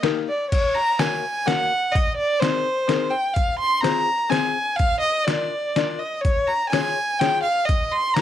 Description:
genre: musette waltz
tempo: 125 BPM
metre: 3/4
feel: straight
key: unclear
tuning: A4 = 440 Hz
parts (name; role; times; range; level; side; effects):
- warm violin; melody; 0.0-8.2 s; C5 to C6; -21 LUFS; equal; none
- open-back banjo; accompaniment; 0.0-8.2 s; Bb3 to D5; -25 LUFS; left 13 dB; none
- trip hop sampler-style drum kit; drums; 0.0-8.2 s; crash cymbal, hi-hat, kick drum, ride cymbal, snare drum; -24 LUFS; equal; none
room: little or no reverb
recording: 1960s-style stereo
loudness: -19 LUFS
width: side -11 dB against mid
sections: 0.5-8.2 A section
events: none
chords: 0.0 Eb; 0.5 Gb; 1.9 Abadd9; 3.4 Fm; 4.8 Bb; 6.2 Db; 7.7 F7(no3) (rootless)

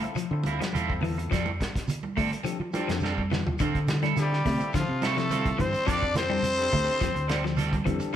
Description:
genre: afrobeat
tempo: 105 BPM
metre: 4/4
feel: straight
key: D minor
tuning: A4 = 442 Hz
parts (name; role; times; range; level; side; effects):
- overdriven tine electric piano; accompaniment; 0.0-8.1 s; C4 to A4; -37 LUFS; left 4 dB; phaser
- electric guitar at the edge of break-up; arpeggios; 0.0-8.0 s; D3 to A3; -33 LUFS; left 6 dB; spring reverb
- electric guitar at the edge of break-up; stabs; 0.0-8.2 s; F3 to A4; -33 LUFS; right 7 dB; spring reverb
- warm soul drum kit; drums; 0.0-8.1 s; hi-hat, kick drum, snare drum, toms; -32 LUFS; equal; none
- congas; percussion; 0.2-8.0 s; none; -34 LUFS; right 4 dB; none
- shekere; percussion; 0.2-8.2 s; none; -36 LUFS; right 2 dB; none
- fingered electric bass; bass; 0.3-8.0 s; D2 to F3; -30 LUFS; equal; none
- growling trumpet; melody; 4.2-7.8 s; F4 to D5; -30 LUFS; left 1 dB; none
- raspy tenor saxophone; second line; 4.2-7.8 s; F3 to D4; -30 LUFS; equal; none
room: moderate stone room reverb, RT60 0.9 s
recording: band playing live in one room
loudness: -24 LUFS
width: side -10 dB against mid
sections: 0.0-3.6 A section; 3.6-8.2 B section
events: drum fill 3.0-3.6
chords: 0.0 Dm9; 1.3 F69; 3.6 Dm9; 5.9 F69

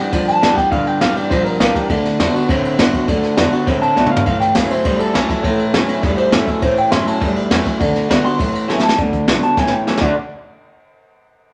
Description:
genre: rockabilly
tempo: 203 BPM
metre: 4/4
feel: straight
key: D major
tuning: A4 = 440 Hz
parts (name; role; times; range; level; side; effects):
- picked swing-style acoustic guitar; accompaniment; 0.0-10.1 s; E2 to G4; -24 LUFS; equal; none
- electric guitar through a small old amp; riff; 0.0-10.1 s; G2 to F#4; -22 LUFS; equal; none
- upright bass; bass; 0.1-10.2 s; F#1 to A2; -32 LUFS; equal; none
- jazz brush drum kit; drums; 0.1-10.1 s; crash cymbal, hi-hat, kick drum, ride cymbal, snare drum, toms; -20 LUFS; equal; none
- electric guitar through a small old amp; melody; 0.3-10.2 s; A4 to C6; -21 LUFS; equal; none
room: moderate large studio reverb, RT60 1.0 s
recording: none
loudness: -16 LUFS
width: mono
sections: 0.0-9.0 A section; 9.0-10.2 B section; 10.2-11.3 C section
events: drum fill 4.0, 8.7, 9.6-10.2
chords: 0.0 G; 0.7 Gm7; 1.9 D; 4.3 A; 7.8 D; 8.4 A; 9.0 D; 9.6 A; 10.0 D; 10.2 N.C.

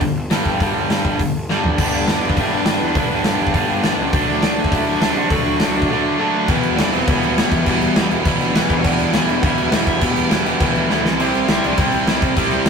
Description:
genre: punk rock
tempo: 204 BPM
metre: 4/4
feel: straight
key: E minor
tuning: A4 = 440 Hz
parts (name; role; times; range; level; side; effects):
- cranked stack guitar; riff; 0.0-12.7 s; G2 to E4; -20 LUFS; right 4 dB; overdrive
- overdriven electric guitar; riff; 0.0-12.7 s; E2 to D4; -22 LUFS; left 6 dB; none
- fuzz picked electric bass; bass; 0.0-12.7 s; E1 to C3; -27 LUFS; equal; overdrive
- big rock drum kit; drums; 0.0-12.7 s; crash cymbal, hi-hat, kick drum, snare drum, toms; -20 LUFS; equal; none
- crunchy overdriven guitar; melody; 1.9-12.7 s; G3 to G5; -25 LUFS; equal; ping-pong delay
room: moderate small room ambience, RT60 0.5 s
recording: rough rehearsal-room recording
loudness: -15 LUFS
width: side -6 dB against mid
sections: 0.0-1.8 A section; 1.8-6.5 B section; 6.5-12.7 C section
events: drum fill 1.5, 10.9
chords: 0.0 G5; 1.8 G; 4.1 D; 6.5 Em; 11.1 C

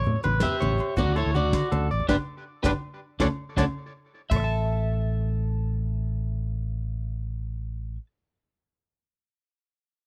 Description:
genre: highlife guitar band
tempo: 108 BPM (dotted quarters)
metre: 12/8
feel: straight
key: A mixolydian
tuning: A4 = 439 Hz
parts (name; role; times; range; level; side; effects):
- picked old ladder-braced acoustic guitar; accompaniment; 0.0-4.4 s; G3 to D4; -34 LUFS; equal; none
- electric guitar at the edge of break-up; arpeggios; 0.0-8.1 s; D4 to A5; -34 LUFS; equal; tape echo
- fingered electric bass; bass; 0.0-8.0 s; G1 to D3; -29 LUFS; equal; none
- soft brush drum kit; drums; 0.0-4.4 s; crash cymbal, hi-hat, kick drum, snare drum, toms; -31 LUFS; equal; none
- congas; percussion; 0.1-4.5 s; none; -35 LUFS; equal; none
- agogo bells; percussion; 0.2-4.4 s; none; -43 LUFS; equal; none
- electric guitar at the edge of break-up; melody; 0.4-8.0 s; D4 to E5; -31 LUFS; equal; lush chorus
room: little or no reverb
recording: dry, close 1970s-style studio recording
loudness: -27 LUFS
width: mono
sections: 0.0-4.3 A section; 4.3-6.5 B section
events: band accent 2.1-4.3; drum fill 3.6-4.3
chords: 0.0 A7; 1.0 Dmaj7; 2.1 G; 3.2 Dmaj7(no3); 4.3 A5

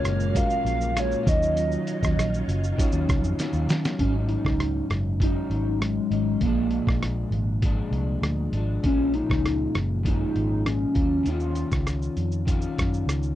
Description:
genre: indie pop, bedroom pop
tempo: 99 BPM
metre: 4/4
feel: straight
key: Eb minor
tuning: A4 = 442 Hz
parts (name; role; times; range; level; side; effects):
- warbly nostalgic lead; melody; 0.0-11.9 s; Ab3 to F5; -27 LUFS; equal; lush chorus, tape echo
- electric guitar at the edge of break-up; accompaniment; 0.0-13.4 s; Ab2 to F4; -30 LUFS; left 3 dB; lush chorus, vibrato effect
- mellow reed electric piano; accompaniment; 0.0-4.0 s; Gb3 to Db5; -34 LUFS; right 3 dB; fast tremolo
- soft string machine; sustained chords; 0.0-4.0 s; Eb3 to F5; -36 LUFS; right 1 dB; ensemble chorus
- vintage muted fingered electric bass; bass; 0.0-13.3 s; Gb1 to Eb3; -26 LUFS; equal; none
- lo-fi sampler-style drum kit; drums; 0.0-13.4 s; hi-hat, kick drum, rim click, shaker, snare drum; -26 LUFS; equal; none
room: little or no reverb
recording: dry, close 1970s-style studio recording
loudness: -22 LUFS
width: side -13 dB against mid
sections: 0.0-4.0 A section; 4.0-13.4 B section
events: drum fill 3.4-4.0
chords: 0.0 Gbmaj9; 1.3 Ebm9; 4.0 Ab7sus4; 6.4 Bb7; 8.8 Gbmaj9; 11.0 Ebm9

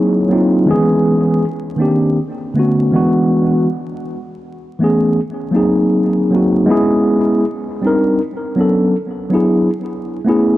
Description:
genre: hip hop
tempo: 80 BPM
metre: 4/4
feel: swing 61% on 16ths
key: unclear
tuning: A4 = 440 Hz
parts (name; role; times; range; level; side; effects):
- mellow tine electric piano; solo; 0.0-10.6 s; D3 to C#5; -13 LUFS; equal; medium stereo tremolo, cassette tape, low-pass filter, tape echo
room: moderate echo chamber reverb, RT60 1.7 s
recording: echo-heavy mix, vinyl crackle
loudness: -12 LUFS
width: side -15 dB against mid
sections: 0.0-6.7 A section; 6.7-10.6 B section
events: none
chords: 0.0 G#7; 0.7 C#m7; 1.4 Cm7; 2.2 Bm7; 2.9 E7; 3.7 Amaj9; 5.2 G#7; 6.7 C#m7; 7.4 Cm7; 8.2 Bm7; 8.9 E7; 9.7 Amaj9

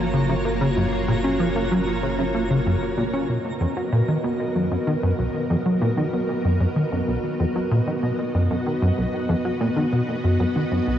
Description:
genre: ambient, sequencer-driven space music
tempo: 95 BPM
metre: 4/4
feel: straight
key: unclear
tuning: A4 = 438 Hz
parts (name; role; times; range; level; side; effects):
- string machine, full ensemble; sustained chords; 0.0-11.0 s; Bb3 to D#5; -25 LUFS; equal; ensemble chorus, shimmer reverb
- warm sub bass; bass; 0.0-3.3 s; Gb1; -31 LUFS; equal; none
- twinkling granular texture; texture; 0.0-3.3 s; Bb5; -38 LUFS; right 2 dB; built-in reverb, shimmer reverb
- plucky analog bass; riff; 0.1-11.0 s; B1 to Db4; -22 LUFS; equal; analog chorus, tape echo, shimmer reverb
room: wet huge ambient reverb, RT60 7.4 s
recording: worn, warbling old tape, cassette tape, warbly pitch drift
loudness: -20 LUFS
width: side -10 dB against mid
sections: 0.0-3.3 A section; 3.3-11.0 B section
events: none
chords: 0.0 Gbmaj7; 3.3 Bmaj7

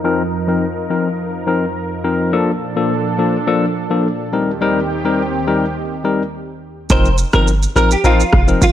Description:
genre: afrobeats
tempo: 105 BPM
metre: 4/4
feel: straight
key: unclear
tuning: A4 = 443 Hz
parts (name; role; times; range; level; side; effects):
- barky tine electric piano; accompaniment; 0.0-8.6 s; F3 to Bb4; -17 LUFS; left 4 dB; low-pass filter
- lush unison pad; sustained chords; 0.0-6.9 s; Eb2 to Bb4; -21 LUFS; right 2 dB; chorus, low-pass filter
- direct-recorded clean electric guitar; melody; 6.9-8.7 s; F4 to C5; -18 LUFS; right 2 dB; ensemble chorus
- hard-hitting 808-style bass; bass; 6.9-8.7 s; F1 to G1; -14 LUFS; equal; none
- booming analog drum machine; drums; 6.9-8.7 s; kick drum, rim click, shaker; -15 LUFS; right 1 dB; none
room: light reverb, digital ambience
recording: none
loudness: -14 LUFS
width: side -11 dB against mid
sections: 0.0-6.9 A section; 6.9-8.7 B section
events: filter sweep 0.0-6.9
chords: 0.0 F7sus4; 2.3 Bbmaj7; 4.3 Eb6; 6.9 F7sus4

